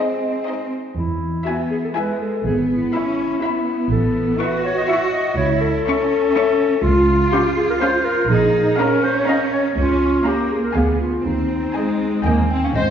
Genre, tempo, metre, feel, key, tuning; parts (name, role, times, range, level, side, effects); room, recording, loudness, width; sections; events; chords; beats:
cinematic, playful, whimsical film cue; 122 BPM; 3/4; straight; E major; A4 = 442 Hz
rich studio violin section; melody; 0.0-12.6 s; Eb5 to C#6; -30 LUFS; left 4 dB
warm studio violin section; second line; 0.0-12.6 s; Eb4 to F5; -31 LUFS; left 2 dB
mellow bassoon; accompaniment; 0.0-0.5 s; Ab3; -25 LUFS; equal
rich studio cello section; bass; 0.0-12.9 s; Ab2 to F#4; -22 LUFS; right 2 dB
mellow clarinet; second line; 1.0-12.5 s; Eb4 to E5; -20 LUFS; left 2 dB
rich studio double bass section; bass; 1.0-12.9 s; G#1 to E2; -22 LUFS; right 2 dB
rich studio viola section; accompaniment; 1.5-12.9 s; Ab3 to C5; -26 LUFS; right 1 dB
xylophone with soft rubber mallets; melody; 12.2-12.9 s; Eb5 to Ab5; -24 LUFS; left 4 dB
wet concert hall reverb, RT60 2.1 s; heard from further back in the room, nothing above 7.6 kHz; -16 LUFS; side -8 dB against mid
1.0-12.8 A section
0.0 Ab; 1.0 E; 2.5 E/G#; 3.9 A; 5.4 A/C#; 6.8 Dbmaj7; 8.3 Bbm; 9.8 Bbm/Db; 10.7 Ddim7; 11.2 Ab/Eb; 12.3 Eb
0.47 | 0.97 1.47 1.96 | 2.45 2.94 3.43 | 3.92 4.41 4.89 | 5.38 5.87 6.35 | 6.84 7.33 7.81 | 8.30 8.78 9.27 | 9.76 10.25 10.75 | 11.25 11.75 12.26 | 12.76